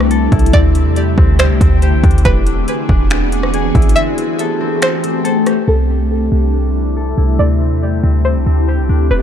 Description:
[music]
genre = hip hop, atmospheric cloud-rap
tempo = 140 BPM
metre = 4/4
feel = half-time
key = C lydian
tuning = A4 = 439 Hz
[part]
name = ethereal airy pad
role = sustained chords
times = 0.0-9.2 s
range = C3 to G#4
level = -17 LUFS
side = left 2 dB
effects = ensemble chorus, built-in reverb, phaser, sidechain pumping, low-pass filter
[part]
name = concert harp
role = arpeggios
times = 0.0-9.2 s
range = C4 to A4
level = -24 LUFS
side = left 6 dB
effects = low-pass filter, digital delay
[part]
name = clean 808-style bass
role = bass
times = 0.0-9.2 s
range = E1 to E2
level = -13 LUFS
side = equal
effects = none
[part]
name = house drum kit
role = drums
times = 0.0-5.6 s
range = finger snaps, hi-hat, kick drum, rim click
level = -15 LUFS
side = equal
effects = overdrive
[part]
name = string-like resonator pluck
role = melody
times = 0.5-9.2 s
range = A4 to E5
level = -21 LUFS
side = right 1 dB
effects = chorus, low-pass filter, digital delay
[part]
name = noise sweep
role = sound effects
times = 9.1-9.2 s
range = none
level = -31 LUFS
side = right 7 dB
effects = none
[sound]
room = little or no reverb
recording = dark, warm production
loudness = -11 LUFS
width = side -9 dB against mid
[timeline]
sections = 0.0-5.7 A section; 5.7-9.2 B section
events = kick muted 4.0-5.7; filter sweep 5.7-9.2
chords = 0.0 C69; 2.2 E7; 4.0 Am7; 5.7 C69

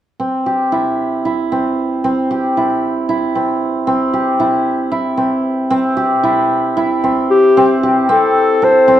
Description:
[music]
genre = contemporary instrumental, chamber music in an uneven meter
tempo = 228 BPM (eighths)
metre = 7/8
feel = straight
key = unclear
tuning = A4 = 440 Hz
[part]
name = hammered dulcimer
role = arpeggios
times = 0.2-9.0 s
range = C4 to A4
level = -14 LUFS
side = right 1 dB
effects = none
[part]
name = dark clarinet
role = melody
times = 7.3-9.0 s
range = G4 to C5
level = -10 LUFS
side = left 2 dB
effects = none
[sound]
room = moderate recital hall reverb, RT60 1.5 s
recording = dark, warm production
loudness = -13 LUFS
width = side -11 dB against mid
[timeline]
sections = 0.2-7.6 A section; 7.6-9.0 B section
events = none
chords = 0.2 C; 7.6 Am7

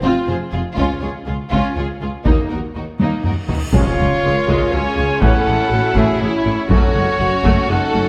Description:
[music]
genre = cinematic, epic orchestral film score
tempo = 121 BPM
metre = 3/4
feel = straight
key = unclear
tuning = A4 = 442 Hz
[part]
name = warm symphonic violin section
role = melody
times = 0.0-8.1 s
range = Eb4 to Db5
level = -29 LUFS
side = equal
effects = none
[part]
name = rich symphonic violin section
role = second line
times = 0.0-8.1 s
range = Bb3 to Db5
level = -26 LUFS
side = equal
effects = none
[part]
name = clear symphonic double bass section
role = bass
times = 0.0-8.0 s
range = F1 to Eb2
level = -26 LUFS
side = equal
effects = none
[part]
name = warm symphonic cello section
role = bass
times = 0.0-8.0 s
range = Db2 to A2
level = -26 LUFS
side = equal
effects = none
[part]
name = clear symphonic viola section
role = accompaniment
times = 0.1-8.1 s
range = Gb3 to F4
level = -26 LUFS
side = equal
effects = none
[part]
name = mellow French horn section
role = sustained chords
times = 0.8-8.1 s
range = Ab3 to Bb4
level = -27 LUFS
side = equal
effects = none
[part]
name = taiko ensemble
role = drums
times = 0.8-7.9 s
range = none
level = -22 LUFS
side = equal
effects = none
[part]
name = cymbal swell and impact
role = sound effects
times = 3.5-5.2 s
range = none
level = -31 LUFS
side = equal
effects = none
[part]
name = clear trombone section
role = sustained chords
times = 3.7-6.9 s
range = E3 to C#4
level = -31 LUFS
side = equal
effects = none
[part]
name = clear trumpet section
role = stabs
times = 3.7-8.1 s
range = C#5 to Ab5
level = -23 LUFS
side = equal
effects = none
[sound]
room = moderate scoring stage reverb, RT60 1.9 s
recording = none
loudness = -17 LUFS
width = mono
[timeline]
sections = 0.0-3.7 A section; 3.7-8.1 B section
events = drum fill 3.0-3.7; cymbal swell 3.5; impact 3.7-5.2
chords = 0.0 Fm; 0.8 Db; 2.3 Ebm; 3.7 Db; 5.2 A; 6.7 Gbm

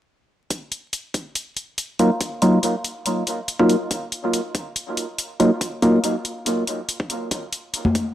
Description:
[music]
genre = deep dubstep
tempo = 141 BPM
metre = 4/4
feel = half-time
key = Eb minor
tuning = A4 = 440 Hz
[part]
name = electronic hi-hat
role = drums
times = 0.5-8.0 s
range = none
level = -26 LUFS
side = left 1 dB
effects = studio reverb
[part]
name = electronic kick drum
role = drums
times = 0.5-8.0 s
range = none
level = -29 LUFS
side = equal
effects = high-pass filter on kick, studio reverb
[part]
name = percussive organ stab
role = stabs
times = 2.0-6.0 s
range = Gb3 to F4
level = -20 LUFS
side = equal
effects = chorus, phaser, dub echo
[part]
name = congas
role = percussion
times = 7.8-7.9 s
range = none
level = -18 LUFS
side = left 2 dB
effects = none
[sound]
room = moderate spring reverb, RT60 1.8 s, digital ambience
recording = dry, gritty hardware recording, vinyl crackle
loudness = -20 LUFS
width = side -12 dB against mid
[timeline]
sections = 0.5-8.1 A section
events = filter sweep on synth stab 0.5-8.1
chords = 0.5 Ebmadd9

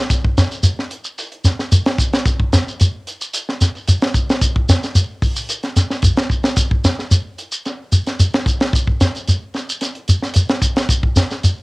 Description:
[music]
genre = afrobeat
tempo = 111 BPM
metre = 4/4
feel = straight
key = none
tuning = none
[part]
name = tight funk drum kit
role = drums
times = 0.1-11.6 s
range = hi-hat, kick drum, snare drum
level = -18 LUFS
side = equal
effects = none
[part]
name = shekere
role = percussion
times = 0.1-11.6 s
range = none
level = -15 LUFS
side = equal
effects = none
[sound]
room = little or no reverb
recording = home recording on cassette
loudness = -15 LUFS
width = side -25 dB against mid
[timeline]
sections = 0.0-11.6 A section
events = none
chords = none

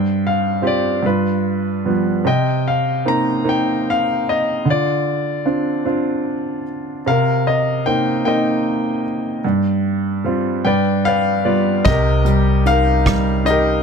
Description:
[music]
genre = acoustic folk-pop ballad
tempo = 50 BPM (dotted quarters)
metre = 6/8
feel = straight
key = C minor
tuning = A4 = 439 Hz
[part]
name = clear grand piano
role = melody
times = 0.0-13.8 s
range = G2 to Bb5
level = -16 LUFS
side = equal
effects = none
[part]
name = upright bass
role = bass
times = 11.9-13.8 s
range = C2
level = -18 LUFS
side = equal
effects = none
[part]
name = soft brush drum kit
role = drums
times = 11.9-13.6 s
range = hi-hat, kick drum, rim click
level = -19 LUFS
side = right 2 dB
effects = none
[sound]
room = light reverb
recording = close, detailed microphones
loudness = -15 LUFS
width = side -6 dB against mid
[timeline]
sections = 0.0-11.8 A section; 11.8-13.8 B section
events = grand piano fill 10.6-11.8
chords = 0.0 G7sus4; 1.0 G7; 2.3 Cm7; 4.7 Dm7; 7.1 Cm7; 9.4 G7sus4; 10.6 G7; 11.8 Cm7

